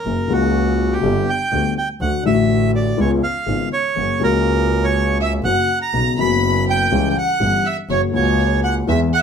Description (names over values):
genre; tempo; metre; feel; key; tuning
tango; 122 BPM; 4/4; rubato; unclear; A4 = 440 Hz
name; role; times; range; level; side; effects
bandoneon; melody; 0.0-9.2 s; F#4 to B5; -20 LUFS; right 5 dB; none
dark upright piano; accompaniment; 0.1-9.1 s; F#1 to G#4; -19 LUFS; left 5 dB; none
clear double bass; bass; 0.1-9.1 s; F#1 to E2; -21 LUFS; right 2 dB; none
clear studio violin section; second line; 5.2-9.2 s; C#5 to B5; -25 LUFS; left 2 dB; none
room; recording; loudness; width
wet club reverb, RT60 0.8 s; none; -15 LUFS; side -7 dB against mid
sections
0.0-9.2 A section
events
none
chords
0.1 F#; 1.0 G; 2.0 D; 3.0 C#7; 4.0 F#; 5.9 Bsus2; 6.9 C#dim; 7.9 F#